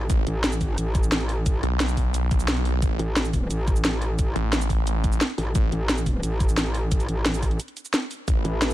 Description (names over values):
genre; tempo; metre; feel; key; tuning
dark technical drum and bass; 176 BPM; 4/4; straight; unclear; A4 = 440 Hz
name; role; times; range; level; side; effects
metallic wobble bass; bass; 0.0-8.7 s; A1; -25 LUFS; equal; chorus
snarling distorted saw bass; bass; 0.1-5.7, 8.3-8.4 s; A1 to B1; -24 LUFS; equal; distortion, tube saturation
drum and bass drum kit; drums; 0.1-8.7 s; hi-hat, shaker, snare drum; -26 LUFS; equal; none
electronic kick drum; drums; 0.1-8.3 s; none; -23 LUFS; equal; none
metallic inharmonic drone; sustained chords; 8.4-8.7 s; A3 to B4; -32 LUFS; equal; chorus, built-in reverb, sidechain pumping
room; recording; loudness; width
little or no reverb; none; -21 LUFS; side -15 dB against mid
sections
0.0-8.7 A section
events
break 7.6-8.3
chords
0.0 A5